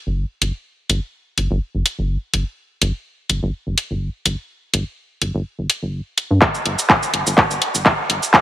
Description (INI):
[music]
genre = minimal techno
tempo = 125 BPM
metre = 4/4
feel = swing 54% on 16ths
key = unclear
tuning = A4 = 442 Hz
[part]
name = rubbery square bass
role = bass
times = 0.1-8.2 s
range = G1 to G2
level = -21 LUFS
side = equal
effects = sidechain pumping
[part]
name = house drum kit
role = drums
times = 0.4-8.4 s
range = handclaps, hi-hat, shaker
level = -15 LUFS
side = equal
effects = small room reverb
[part]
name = electronic kick drum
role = drums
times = 6.4-8.4 s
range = none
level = -17 LUFS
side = equal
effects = small room reverb
[sound]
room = moderate lush hall reverb, RT60 2.1 s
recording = high-pass filter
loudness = -18 LUFS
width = side -13 dB against mid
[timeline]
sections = 0.0-8.4 A section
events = build-up 0.0-8.4; drum fill 6.4-8.4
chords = none